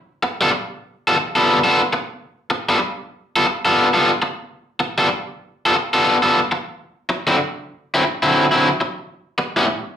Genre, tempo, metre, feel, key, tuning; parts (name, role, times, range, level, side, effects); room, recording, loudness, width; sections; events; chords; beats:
blues; 105 BPM; 4/4; swing 66% on 8ths; A4 = 439 Hz
overdriven electric guitar; solo; 0.2-9.7 s; A2 to A4; -16 LUFS; equal; slapback echo
moderate club reverb, RT60 0.6 s; live gig heard through the venue's PA, club reverb; -16 LUFS; side -9 dB against mid
0.0-10.0 A section
0.0 G9; 6.9 D9; 9.2 A9
| 0.03 0.60 1.18 1.75 | 2.32 2.89 3.46 4.04 | 4.61 5.18 5.75 6.33 | 6.90 7.47 8.05 8.62 | 9.20